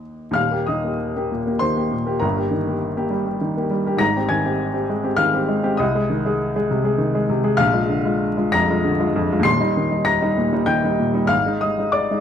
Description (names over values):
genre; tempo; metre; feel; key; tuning
classical, romantic character piece for solo piano; 86-103 BPM; 3/4; rubato; Eb major; A4 = 440 Hz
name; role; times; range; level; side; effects
warm upright piano; solo; 0.0-12.2 s; Eb1 to C7; -18 LUFS; left 1 dB; none
room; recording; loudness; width
light reverb; close, detailed microphones, vinyl crackle; -18 LUFS; side -8 dB against mid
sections
0.4-12.2 A section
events
none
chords
0.4 Eb; 2.2 Eb/G; 4.0 Abmaj7; 5.8 Ab/C; 7.6 Bb7; 9.5 Eb; 11.3 Ab5